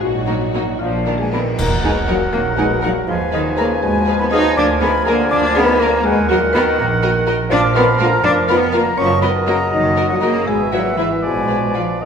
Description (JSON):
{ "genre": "cinematic, playful, whimsical film cue", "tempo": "76-83 BPM (dotted quarters)", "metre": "6/8", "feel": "straight", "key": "Eb minor", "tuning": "A4 = 442 Hz", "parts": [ { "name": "buzzing marimba with medium hard mallets", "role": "melody", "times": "0.0-12.1 s", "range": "Eb4 to Eb5", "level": "-23 LUFS", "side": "left 4 dB", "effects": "none" }, { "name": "warm studio violin section", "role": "melody", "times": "0.0-11.8 s", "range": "Gb4 to Gb5", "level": "-32 LUFS", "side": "left 2 dB", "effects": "none" }, { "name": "warm French horn section", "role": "sustained chords", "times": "0.0-12.1 s", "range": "Gb2 to Eb4", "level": "-23 LUFS", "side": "left 3 dB", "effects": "none" }, { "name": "rich studio cello section", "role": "bass", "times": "0.0-12.1 s", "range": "Bb2 to Eb4", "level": "-20 LUFS", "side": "right 1 dB", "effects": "none" }, { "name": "warm studio double bass section", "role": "bass", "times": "0.0-12.1 s", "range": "F1 to Eb2", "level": "-23 LUFS", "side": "right 4 dB", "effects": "none" }, { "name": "warm studio violin section", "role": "second line", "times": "0.3-11.8 s", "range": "D4 to Cb5", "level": "-29 LUFS", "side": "left 1 dB", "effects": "none" }, { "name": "warm studio viola section", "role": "accompaniment", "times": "0.3-11.8 s", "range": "D3 to Ab4", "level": "-26 LUFS", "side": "right 1 dB", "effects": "none" }, { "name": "concert flute", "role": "second line", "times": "0.8-12.1 s", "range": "Eb5 to Eb6", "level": "-22 LUFS", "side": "left 2 dB", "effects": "none" }, { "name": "clear oboe", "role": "second line", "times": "1.6-12.1 s", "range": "D5 to Ab5", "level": "-24 LUFS", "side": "right 1 dB", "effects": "none" }, { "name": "warm clarinet", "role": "second line", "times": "1.6-12.1 s", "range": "Bb4 to B4", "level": "-26 LUFS", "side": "left 1 dB", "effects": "none" }, { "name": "warm bassoon", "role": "accompaniment", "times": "1.6-12.1 s", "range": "Eb3 to Gb3", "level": "-24 LUFS", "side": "right 1 dB", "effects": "none" }, { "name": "clash cymbals and concert bass drum", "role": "percussion", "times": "1.6-2.5 s", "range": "none", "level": "-26 LUFS", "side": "equal", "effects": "none" } ], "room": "wet scoring stage reverb, RT60 1.6 s", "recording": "minimal, uncompressed stereo recording", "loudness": "-14 LUFS", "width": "side -7 dB against mid", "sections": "0.0-1.6 A section; 1.6-12.1 B section", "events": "band accent 1.6-2.1", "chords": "0.0 Ebm/Bb; 0.8 Bb; 1.6 Ebm; 3.1 Fm7b5/Eb; 4.6 Bb7/D; 6.1 Ebm; 7.5 Bb; 9.0 Ebm/Gb; 10.5 E/G#; 11.2 Bb7b9" }